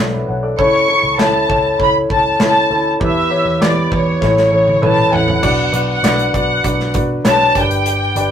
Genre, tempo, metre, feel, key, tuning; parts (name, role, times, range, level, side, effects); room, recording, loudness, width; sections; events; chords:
piano-driven pop; 99 BPM; 4/4; straight; A4 = 439 Hz
warm concert grand piano; accompaniment; 0.0-8.3 s; G2 to F#5; -16 LUFS; left 1 dB
vintage muted picked electric bass; bass; 0.0-8.3 s; G1 to B2; -21 LUFS; right 1 dB
warm studio violin section; melody; 0.6-8.3 s; C#5 to C#6; -16 LUFS; left 1 dB
modern studio drum kit; drums; 0.6-8.3 s; crash cymbal, handclaps, hi-hat, kick drum, snare drum, toms; -20 LUFS; equal
wet booth ambience, RT60 0.2 s; rough rehearsal-room recording; -12 LUFS; side -9 dB against mid
0.0-5.4 A section; 5.4-8.3 B section
drum fill 4.2-5.4
0.0 Bm; 0.6 A/C#; 3.0 Em; 4.2 A; 5.4 Bm; 7.6 G